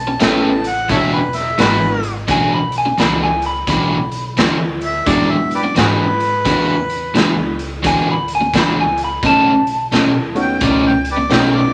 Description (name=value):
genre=electric blues shuffle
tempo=86 BPM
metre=4/4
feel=swing 63% on 8ths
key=E mixolydian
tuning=A4 = 440 Hz
part: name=electric guitar through a small old amp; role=melody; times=0.0-10.6 s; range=A4 to B5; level=-20 LUFS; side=equal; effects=none
part: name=warm harmonica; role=second line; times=0.0-11.7 s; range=F#4 to A5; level=-22 LUFS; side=equal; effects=none
part: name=upright bass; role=bass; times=0.0-11.7 s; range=E1 to G#2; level=-28 LUFS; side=equal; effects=none
part: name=overdriven semi-hollow guitar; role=riff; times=0.1-11.6 s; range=B2 to B4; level=-19 LUFS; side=equal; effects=none
part: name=barky reed electric piano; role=accompaniment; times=0.2-11.7 s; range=G#3 to A4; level=-22 LUFS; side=equal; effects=none
part: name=raw garage drum kit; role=drums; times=0.2-11.5 s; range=hi-hat, kick drum, snare drum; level=-23 LUFS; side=equal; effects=none
room=wet small room ambience, RT60 0.5 s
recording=none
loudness=-16 LUFS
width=mono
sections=0.0-11.7 A section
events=none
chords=0.0 A9; 0.9 E9; 9.2 B9